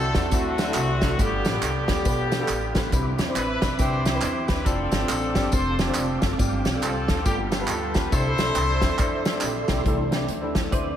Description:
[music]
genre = uptempo gospel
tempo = 138 BPM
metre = 4/4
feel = swing 60% on 8ths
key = C major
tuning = A4 = 440 Hz
[part]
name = warm horn section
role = melody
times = 0.0-9.4 s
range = A3 to C5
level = -28 LUFS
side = left 1 dB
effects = tape echo
[part]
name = warm grand piano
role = accompaniment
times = 0.0-10.9 s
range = G2 to C5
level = -30 LUFS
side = left 1 dB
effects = lush chorus
[part]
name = percussive tonewheel organ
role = sustained chords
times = 0.0-10.2 s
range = E3 to D6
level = -31 LUFS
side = right 1 dB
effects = slow rotary speaker, chorus vibrato
[part]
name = upright bass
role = bass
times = 0.0-11.0 s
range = F1 to E2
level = -29 LUFS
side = equal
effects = none
[part]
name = natural country drum kit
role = drums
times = 0.1-10.8 s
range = hi-hat, kick drum, snare drum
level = -25 LUFS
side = equal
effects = none
[part]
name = tambourine and handclaps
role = percussion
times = 0.2-9.8 s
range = none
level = -34 LUFS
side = right 3 dB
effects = none
[part]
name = dark French horn section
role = sustained chords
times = 9.9-11.0 s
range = E3 to D4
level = -36 LUFS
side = equal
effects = none
[part]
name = clean electric guitar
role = second line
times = 10.7-11.0 s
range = B4 to D5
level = -30 LUFS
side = right 3 dB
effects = ensemble chorus
[sound]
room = moderate lush hall reverb, RT60 1.9 s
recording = dreamy mix soaked in reverb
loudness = -21 LUFS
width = side -10 dB against mid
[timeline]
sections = 0.0-9.9 A section; 9.9-11.0 B section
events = none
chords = 0.0 D9; 1.2 G9; 2.9 Cmaj9; 4.7 F6; 6.4 G7sus4; 7.3 G9; 8.1 C69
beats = 0.32 0.76 | 1.19 1.62 2.06 2.49 | 2.93 3.36 3.79 4.23 | 4.66 5.09 5.53 5.96 | 6.39 6.83 7.26 7.69 | 8.12 8.56 8.99 9.42 | 9.86 10.29 10.72

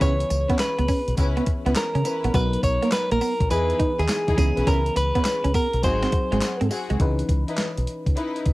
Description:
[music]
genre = R&B, new jack swing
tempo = 103 BPM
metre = 4/4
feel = swing 66% on 16ths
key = C# dorian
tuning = A4 = 439 Hz
[part]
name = direct-recorded clean electric guitar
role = melody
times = 0.0-6.7 s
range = G#4 to C#5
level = -25 LUFS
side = equal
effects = cassette tape
[part]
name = FM electric piano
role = accompaniment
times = 0.0-8.5 s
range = E3 to B4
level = -32 LUFS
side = left 2 dB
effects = chorus, cassette tape
[part]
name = electric guitar at the edge of break-up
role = riff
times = 0.0-7.0 s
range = G#3 to D#4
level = -27 LUFS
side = right 3 dB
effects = analog chorus, cassette tape
[part]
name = warm studio string section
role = stabs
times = 0.0-8.4 s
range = B3 to B4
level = -31 LUFS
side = left 3 dB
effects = cassette tape
[part]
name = deep dub fingered electric bass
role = bass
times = 0.0-8.5 s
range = G#1 to C#3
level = -24 LUFS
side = equal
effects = transformer saturation
[part]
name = clean 12-bit digital drum machine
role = drums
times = 0.0-8.5 s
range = handclaps, hi-hat, kick drum, snare drum, tambourine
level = -25 LUFS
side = equal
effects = cassette tape
[sound]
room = light reverb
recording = home recording on cassette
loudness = -20 LUFS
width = side -19 dB against mid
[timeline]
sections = 0.0-7.0 A section; 7.0-8.5 B section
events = none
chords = 0.0 C#m7; 2.3 Bmaj7; 3.5 Emaj7; 4.4 C#m7; 5.8 G#7; 7.0 C#m9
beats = | 0.01 0.59 1.18 1.76 | 2.34 2.92 3.51 4.09 | 4.67 5.25 5.84 6.42 | 7.00 7.58 8.17

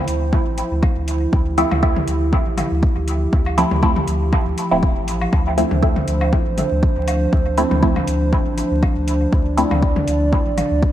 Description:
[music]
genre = dub techno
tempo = 120 BPM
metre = 4/4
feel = swing 55% on 16ths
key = D minor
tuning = A4 = 439 Hz
[part]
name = dark analog pad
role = sustained chords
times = 0.0-10.9 s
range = F3 to D5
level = -23 LUFS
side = right 1 dB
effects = chorus, sidechain pumping
[part]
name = soft dub sub bass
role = bass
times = 0.1-10.9 s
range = D1 to D2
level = -22 LUFS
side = equal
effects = sidechain pumping
[part]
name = electronic hi-hat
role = drums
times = 0.1-10.7 s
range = none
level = -35 LUFS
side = equal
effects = overdrive
[part]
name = electronic kick drum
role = drums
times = 0.3-10.9 s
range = none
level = -18 LUFS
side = equal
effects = overdrive
[part]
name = electronic woodblock and toms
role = percussion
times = 0.8-10.7 s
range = none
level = -27 LUFS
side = left 2 dB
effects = sidechain pumping on toms, sidechain pumping on perc, dub echo
[part]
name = filtered dub chord stab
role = stabs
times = 1.6-9.8 s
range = F3 to E4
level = -22 LUFS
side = equal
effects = phaser, sidechain pumping, dub echo
[sound]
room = light reverb, digital ambience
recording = bright 1980s-style digital production, vinyl crackle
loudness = -16 LUFS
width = side -12 dB against mid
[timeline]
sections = 0.0-10.9 A section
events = none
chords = 0.0 Dm9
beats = 0.33 0.83 | 1.33 1.83 2.33 2.83 | 3.33 3.83 4.33 4.83 | 5.33 5.83 6.33 6.83 | 7.33 7.83 8.33 8.83 | 9.33 9.83 10.33 10.83

